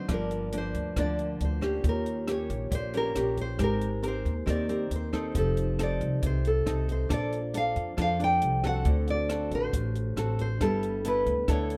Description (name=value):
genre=bossa nova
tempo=137 BPM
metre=4/4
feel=straight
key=G minor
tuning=A4 = 439 Hz
part: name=nylon-string guitar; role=melody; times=0.0-11.8 s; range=A4 to G5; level=-34 LUFS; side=equal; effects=none
part: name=nylon-string guitar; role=accompaniment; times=0.0-11.8 s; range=G2 to Bb4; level=-35 LUFS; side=equal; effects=none
part: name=vibraphone with soft mallets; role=accompaniment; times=0.1-11.8 s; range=D4 to A5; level=-41 LUFS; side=equal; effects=none
part: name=upright bass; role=bass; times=0.1-11.8 s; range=F1 to F2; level=-33 LUFS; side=equal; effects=none
part: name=compact cocktail drum kit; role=drums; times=0.1-11.8 s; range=hi-hat, kick drum, rim click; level=-36 LUFS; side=equal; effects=none
room=little or no reverb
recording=none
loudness=-28 LUFS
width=mono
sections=0.1-11.8 A section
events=none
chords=0.1 Gm7; 1.8 Eb7; 3.6 Abmaj9; 5.4 F7; 7.1 Bbmaj7; 8.9 D7; 10.6 G69